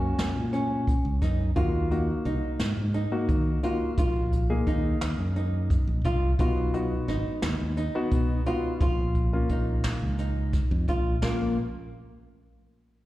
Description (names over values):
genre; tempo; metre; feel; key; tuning
progressive instrumental, band music in an uneven meter; 174 BPM (eighths); 7/8; straight; Bb minor; A4 = 440 Hz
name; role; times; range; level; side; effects
dark concert grand piano; accompaniment; 0.0-11.6 s; Bb3 to Ab4; -32 LUFS; left 2 dB; plate reverb, slapback echo
nylon-string guitar; arpeggios; 0.0-11.6 s; Bb3 to F4; -32 LUFS; equal; plate reverb, slapback echo
modern bright fingered electric bass; bass; 0.0-11.6 s; Ab1 to Eb3; -28 LUFS; equal; none
jazz brush drum kit; drums; 0.2-11.4 s; hi-hat, kick drum, snare drum; -27 LUFS; equal; none
room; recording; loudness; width
light reverb; live gig heard through the venue's PA, recital hall reverb; -24 LUFS; side -16 dB against mid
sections
0.0-11.2 A section; 11.2-13.1 B section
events
none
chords
0.0 Gb; 1.6 Ebm; 6.4 B; 8.8 Bbm